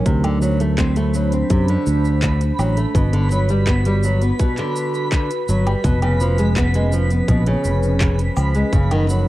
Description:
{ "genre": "folktronica", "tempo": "83 BPM", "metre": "4/4", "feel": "straight", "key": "unclear", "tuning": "A4 = 439 Hz", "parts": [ { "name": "warbly tape-like pad", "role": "sustained chords", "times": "0.0-9.3 s", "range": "E#3 to C5", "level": "-25 LUFS", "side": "right 1 dB", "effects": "chorus, built-in reverb, cassette tape" }, { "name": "nylon-string guitar", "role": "arpeggios", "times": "0.0-9.3 s", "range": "B2 to C4", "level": "-23 LUFS", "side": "equal", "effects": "cassette tape, tape echo" }, { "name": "fingered electric bass", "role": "bass", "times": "0.1-9.3 s", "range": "E#1 to F#2", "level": "-18 LUFS", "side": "equal", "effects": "none" }, { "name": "electronic kick drum", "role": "drums", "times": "0.1-8.9 s", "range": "none", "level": "-18 LUFS", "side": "equal", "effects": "overdrive" }, { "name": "organic electronic drum kit", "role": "drums", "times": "0.1-9.2 s", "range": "cabasa, handclaps, hi-hat, woodblock", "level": "-29 LUFS", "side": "equal", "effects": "overdrive" }, { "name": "twinkling granular texture", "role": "texture", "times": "0.4-9.3 s", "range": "F#5 to B5", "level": "-30 LUFS", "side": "right 2 dB", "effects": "built-in reverb, cassette tape" } ], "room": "little or no reverb", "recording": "home recording on cassette", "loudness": "-16 LUFS", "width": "side -16 dB against mid", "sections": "0.0-9.3 A section", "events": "none", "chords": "0.1 D7; 3.0 Gmaj7; 5.8 C#7/E#; 8.7 F#6", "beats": "| 0.06 0.79 1.51 2.23 | 2.96 3.68 4.40 5.12 | 5.85 6.57 7.29 8.02 | 8.74" }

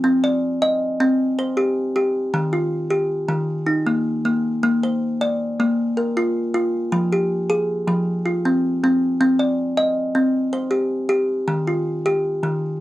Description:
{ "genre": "southern african traditional", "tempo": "105 BPM (dotted quarters)", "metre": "12/8", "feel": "straight", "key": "unclear", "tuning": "A4 = 440 Hz", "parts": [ { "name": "kalimba", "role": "solo", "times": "0.0-12.8 s", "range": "Eb3 to Eb5", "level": "-18 LUFS", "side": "equal", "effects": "none" } ], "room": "light reverb", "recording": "close, detailed microphones", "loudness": "-18 LUFS", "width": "side -16 dB against mid", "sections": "0.0-12.8 A section", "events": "none", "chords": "0.1 Cm; 2.3 Eb; 4.6 Bb; 6.9 Fm; 9.2 Cm; 11.5 Eb", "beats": "| 0.05 0.63 1.20 1.77 | 2.35 2.92 3.49 4.06 | 4.64 5.21 5.78 6.35 | 6.92 7.50 8.07 8.64 | 9.21 9.78 10.35 10.92 | 11.49 12.05 12.62" }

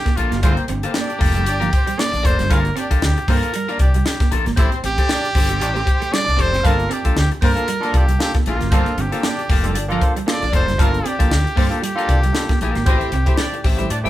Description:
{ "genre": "funk", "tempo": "116 BPM", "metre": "4/4", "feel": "swing 56% on 16ths", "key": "G dorian", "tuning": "A4 = 440 Hz", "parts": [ { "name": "clear trumpet", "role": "melody", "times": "0.0-14.1 s", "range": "E4 to D5", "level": "-23 LUFS", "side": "right 1 dB", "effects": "none" }, { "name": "electric guitar at the edge of break-up", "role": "accompaniment", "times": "0.1-14.1 s", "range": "Bb3 to G5", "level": "-27 LUFS", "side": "left 5 dB", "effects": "none" }, { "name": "clean electric guitar", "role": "riff", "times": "0.1-14.1 s", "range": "F3 to C4", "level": "-28 LUFS", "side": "right 7 dB", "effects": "none" }, { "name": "crisp fusion drum kit", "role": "drums", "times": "0.1-14.1 s", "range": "hi-hat, kick drum, snare drum", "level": "-19 LUFS", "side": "equal", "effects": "none" }, { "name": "overdriven fingered electric bass", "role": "bass", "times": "0.2-14.1 s", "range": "F1 to A2", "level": "-21 LUFS", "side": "equal", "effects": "none" }, { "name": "warm horn section", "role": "second line", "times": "0.4-14.0 s", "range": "C4 to F5", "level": "-28 LUFS", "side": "equal", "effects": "none" }, { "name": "barky tine electric piano", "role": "stabs", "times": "6.6-14.1 s", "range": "A3 to A4", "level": "-26 LUFS", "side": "right 1 dB", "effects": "overdrive" } ], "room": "moderate studio reverb, RT60 0.8 s", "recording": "band playing live in one room", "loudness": "-15 LUFS", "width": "side -14 dB against mid", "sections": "0.0-14.1 A section", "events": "none", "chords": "0.0 Gm9; 4.6 Am7; 6.6 Gm9; 12.9 Am7", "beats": "| 0.43 0.95 1.47 1.98 | 2.50 3.02 3.54 4.06 | 4.57 5.09 5.61 6.13 | 6.64 7.16 7.68 8.20 | 8.72 9.23 9.75 10.27 | 10.79 11.31 11.83 12.35 | 12.86 13.38 13.90" }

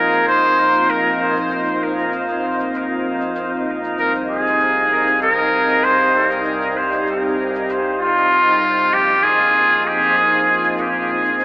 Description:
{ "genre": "ambient dub", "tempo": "97 BPM", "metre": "4/4", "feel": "swing 54% on 16ths", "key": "unclear", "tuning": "A4 = 441 Hz", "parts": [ { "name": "trumpet with metal mute", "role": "melody", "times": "0.0-11.1 s", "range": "F4 to C5", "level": "-15 LUFS", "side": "equal", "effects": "dub echo" }, { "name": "soft additive organ-like pad", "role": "sustained chords", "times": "0.0-11.4 s", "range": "Bb2 to Eb4", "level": "-23 LUFS", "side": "equal", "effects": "ensemble chorus, built-in reverb" }, { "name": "soft dub sub bass", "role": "bass", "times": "0.0-11.4 s", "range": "Bb1 to C2", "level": "-39 LUFS", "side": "equal", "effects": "none" }, { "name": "drifting glass-harmonics texture", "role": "texture", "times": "0.0-11.4 s", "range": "Eb4 to F5", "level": "-26 LUFS", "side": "equal", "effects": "chorus, built-in reverb" }, { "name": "shaker", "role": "drums", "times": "0.1-11.4 s", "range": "none", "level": "-52 LUFS", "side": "equal", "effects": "none" } ], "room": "wet echo chamber reverb, RT60 2.1 s", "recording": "vinyl crackle, telephone sound", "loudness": "-14 LUFS", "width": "side -23 dB against mid", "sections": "0.0-11.4 A section", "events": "none", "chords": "0.0 Bbsus4; 4.0 Cm; 8.9 Bb7sus4", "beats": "0.27 0.89 | 1.51 2.12 2.74 3.36 | 3.98 4.60 5.22 5.84 | 6.46 7.07 7.69 8.31 | 8.93 9.55 10.17 10.78 | 11.40" }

